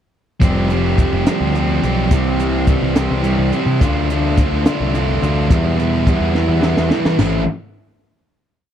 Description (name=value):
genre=indie rock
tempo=71 BPM (dotted quarters)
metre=6/8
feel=straight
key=A minor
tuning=A4 = 439 Hz
part: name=sludgy distorted guitar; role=riff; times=0.4-7.4 s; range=E2 to G4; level=-17 LUFS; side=right 1 dB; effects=overdrive
part: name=fuzz picked electric bass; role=bass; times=0.4-7.5 s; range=F1 to E3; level=-19 LUFS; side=equal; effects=overdrive
part: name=compact cocktail drum kit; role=drums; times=0.4-7.3 s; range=hi-hat, kick drum, snare drum, splash cymbal, toms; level=-17 LUFS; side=equal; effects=none
room=studio ambience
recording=dry, close 1970s-style studio recording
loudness=-14 LUFS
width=side -9 dB against mid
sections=0.4-7.2 pre-chorus; 7.2-8.7 final chord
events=drum fill 6.4-7.2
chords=0.4 Fsus2; 2.1 C; 3.8 Dm7; 5.5 Em; 7.2 Am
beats=| 0.42 1.27 | 2.12 2.96 | 3.81 4.66 | 5.50 6.35 | 7.20